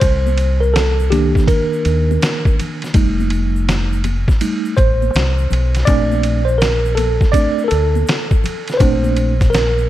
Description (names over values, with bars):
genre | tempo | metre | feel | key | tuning
hip hop, jazz-hop | 82 BPM | 4/4 | swing 66% on 16ths | Bb major | A4 = 443 Hz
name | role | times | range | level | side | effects
mellow tine electric piano | accompaniment | 0.0-9.9 s | Eb3 to D5 | -18 LUFS | right 1 dB | medium stereo tremolo
deep dub fingered electric bass | bass | 0.0-9.9 s | F1 to Eb2 | -16 LUFS | equal | none
trip hop sampler-style drum kit | drums | 0.0-9.8 s | hi-hat, kick drum, ride cymbal, snare drum | -18 LUFS | equal | none
egg shaker and congas | percussion | 0.0-9.9 s | none | -30 LUFS | left 9 dB | none
room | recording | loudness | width
digital ambience | none | -13 LUFS | side -14 dB against mid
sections
0.0-9.9 A section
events
tine electric piano solo 0.0-9.9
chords
0.0 Cm7; 2.9 F7; 5.9 Bbmaj7